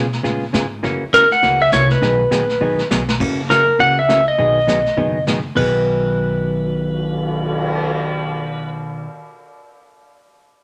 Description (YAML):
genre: country, western swing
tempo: 203 BPM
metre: 4/4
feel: swing 60% on 8ths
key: B major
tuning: A4 = 438 Hz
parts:
  - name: hollow-body jazz guitar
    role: accompaniment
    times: 0.0-9.1 s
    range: B2 to G#4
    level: -24 LUFS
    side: equal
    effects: none
  - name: upright bass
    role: bass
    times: 0.0-9.0 s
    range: F#1 to B2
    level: -27 LUFS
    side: equal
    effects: none
  - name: vintage brush drum kit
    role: drums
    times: 0.1-7.9 s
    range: brushed snare drum, crash cymbal, cymbal swell, hi-hat, kick drum, snare drum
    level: -27 LUFS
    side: equal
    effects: none
  - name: pedal steel guitar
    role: melody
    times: 1.1-8.7 s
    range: A#4 to F#5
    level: -18 LUFS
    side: equal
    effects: none
room: wet studio reverb, RT60 0.7 s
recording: none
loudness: -17 LUFS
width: mono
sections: 0.0-3.2 A section; 3.2-5.6 B section; 5.6-7.9 C section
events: drum fill 2.6-3.2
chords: 0.0 C#7; 0.8 F#7; 2.0 B6; 3.2 F#7; 4.4 B6